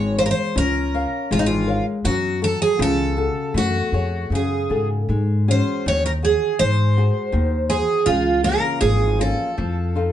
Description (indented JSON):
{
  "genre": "fado-style ballad",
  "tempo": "80 BPM",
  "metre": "2/4",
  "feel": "rubato",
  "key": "Db major",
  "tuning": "A4 = 440 Hz",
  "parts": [
    { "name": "picked twelve-string acoustic guitar", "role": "melody", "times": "0.0-10.1 s", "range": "Eb4 to Db5", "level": "-21 LUFS", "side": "right 3 dB", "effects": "none" },
    { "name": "flamenco guitar", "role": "accompaniment", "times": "0.0-10.1 s", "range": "Db3 to F5", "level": "-24 LUFS", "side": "left 4 dB", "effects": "none" },
    { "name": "upright bass", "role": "bass", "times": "0.0-10.1 s", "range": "Ab1 to Ab2", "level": "-22 LUFS", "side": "equal", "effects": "none" }
  ],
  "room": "moderate studio ambience, RT60 0.5 s",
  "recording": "band playing live in one room, nothing above 10.9 kHz",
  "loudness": "-18 LUFS",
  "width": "side -11 dB against mid",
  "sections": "0.0-10.1 A section",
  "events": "none",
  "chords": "0.0 Db6; 2.0 Gbmadd9; 5.1 Ab7sus4; 6.6 Ab7; 8.1 Db6; 9.6 F7"
}